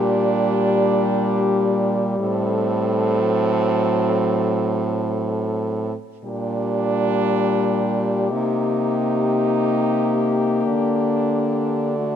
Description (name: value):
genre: classical, lyrical piece for horn quartet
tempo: free time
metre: none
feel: none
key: G minor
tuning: A4 = 439 Hz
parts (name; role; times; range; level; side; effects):
- warm French horn; melody; 0.0-12.2 s; F#4 to A4; -26 LUFS; left 9 dB; none
- clear French horn; second line; 0.0-12.2 s; C4 to Eb4; -24 LUFS; right 8 dB; none
- dark French horn; accompaniment; 0.0-12.2 s; F#3 to Bb3; -23 LUFS; left 3 dB; none
- clear French horn; bass; 0.0-12.2 s; A2 to D3; -24 LUFS; right 2 dB; none
room: light reverb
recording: close, detailed microphones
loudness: -18 LUFS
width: side -9 dB against mid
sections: 0.0-12.2 A section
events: none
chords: 0.0 Gm/Bb; 2.2 F#dim/A; 6.2 Gm/Bb; 8.3 Cm7; 10.7 D5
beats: free time